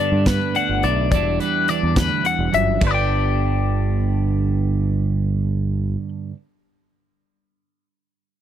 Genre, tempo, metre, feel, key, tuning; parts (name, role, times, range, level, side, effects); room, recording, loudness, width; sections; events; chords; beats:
math rock and midwest emo; 71 BPM (dotted quarters); 6/8; straight; G major; A4 = 440 Hz
twelve-string electric guitar; accompaniment; 0.0-6.4 s; D2 to E4; -23 LUFS; right 7 dB
twelve-string electric guitar; arpeggios; 0.0-6.1 s; B4 to G5; -22 LUFS; left 9 dB
growling fingered electric bass; bass; 0.1-6.0 s; E1 to G2; -21 LUFS; equal; overdrive
modern studio drum kit; drums; 0.3-2.9 s; crash cymbal, hi-hat, kick drum, snare drum; -22 LUFS; equal
little or no reverb; dry, close 1970s-style studio recording; -17 LUFS; side -10 dB against mid
0.0-2.8 A section; 2.8-6.2 B section
0.0 Gmaj7; 1.1 Em7; 2.8 G
0.27 | 1.12 1.97 | 2.82 3.67 | 4.52 5.37